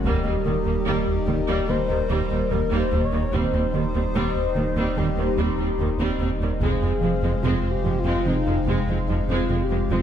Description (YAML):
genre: cinematic, hybrid orchestral and electronic film score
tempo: 73 BPM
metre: 4/4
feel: straight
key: F minor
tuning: A4 = 436 Hz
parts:
  - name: pure sine lead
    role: melody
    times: 0.0-10.0 s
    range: Eb4 to Db5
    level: -28 LUFS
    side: left 3 dB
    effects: chorus, phaser, ping-pong delay
  - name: phased analog pad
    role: sustained chords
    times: 0.0-10.0 s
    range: G3 to F5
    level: -29 LUFS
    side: left 1 dB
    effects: phaser, chorus
  - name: rubbery square bass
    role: riff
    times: 0.0-10.0 s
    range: Eb2 to F3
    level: -28 LUFS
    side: right 1 dB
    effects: none
  - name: rich symphonic cello section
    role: bass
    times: 0.0-10.0 s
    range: Eb2 to F2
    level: -29 LUFS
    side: right 3 dB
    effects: none
  - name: sub bass with octave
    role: bass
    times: 0.0-10.0 s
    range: Eb1 to F1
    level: -29 LUFS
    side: left 1 dB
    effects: none
  - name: rich symphonic viola section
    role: accompaniment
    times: 0.1-10.0 s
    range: Eb3 to C4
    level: -29 LUFS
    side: right 2 dB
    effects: none
  - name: warm symphonic double bass section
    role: bass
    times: 0.1-10.0 s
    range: F1 to Eb2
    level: -31 LUFS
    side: right 3 dB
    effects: none
  - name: taiko ensemble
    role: drums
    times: 0.1-1.7, 6.6-8.2 s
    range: none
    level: -30 LUFS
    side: left 1 dB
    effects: none
  - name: swell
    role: sound effects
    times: 9.9-10.0 s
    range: none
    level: barely audible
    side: none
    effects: none
room: light reverb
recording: none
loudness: -20 LUFS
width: side -9 dB against mid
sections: 0.0-10.0 A section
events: none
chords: 0.0 Eb; 3.3 Cm/Eb; 6.6 Fm